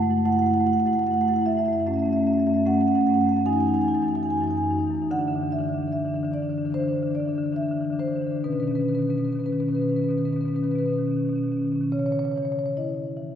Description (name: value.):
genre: classical, contemporary piece for solo marimba.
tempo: 68-76 BPM.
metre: 4/4.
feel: rubato.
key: unclear.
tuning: A4 = 440 Hz.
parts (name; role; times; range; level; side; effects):
marimba with soft mallets; solo; 0.0-13.4 s; F#2 to A5; -22 LUFS; equal; none.
room: wet scoring stage reverb, RT60 1.8 s.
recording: recorded in a church or concert hall.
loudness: -22 LUFS.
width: side -9 dB against mid.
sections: 0.0-11.9 A section; 11.9-13.4 B section.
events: none.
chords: 0.0 F#m7; 1.9 A6/F#; 3.5 Emaj9/F#; 5.1 Dsus2; 8.4 Badd9; 11.9 C#m.